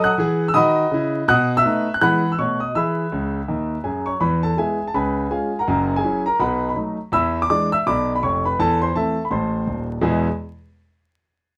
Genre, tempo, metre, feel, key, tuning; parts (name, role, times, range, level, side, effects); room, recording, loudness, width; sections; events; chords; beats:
jazz, stride piano; 164 BPM; 4/4; swing 60% on 8ths; E major; A4 = 442 Hz
warm concert grand piano; solo; 0.0-10.3 s; D#1 to F#6; -20 LUFS; equal
light reverb; close, detailed microphones, vinyl crackle; -20 LUFS; mono
0.0-4.2 A section; 4.2-10.0 B section; 10.0-11.5 C section
grand piano fill 3.1-4.2
0.0 B7; 2.0 E; 2.4 B7; 2.8 E; 4.9 C#7; 5.7 F#7; 6.4 B7; 7.1 E7; 8.6 Am/E; 10.0 E
0.20 0.56 0.93 | 1.29 1.66 2.02 2.39 | 2.75 3.12 3.48 3.85 | 4.21 4.58 4.94 5.31 | 5.67 6.04 6.40 6.77 | 7.13 7.50 7.86 8.22 | 8.59 8.95 9.32 9.68 | 10.05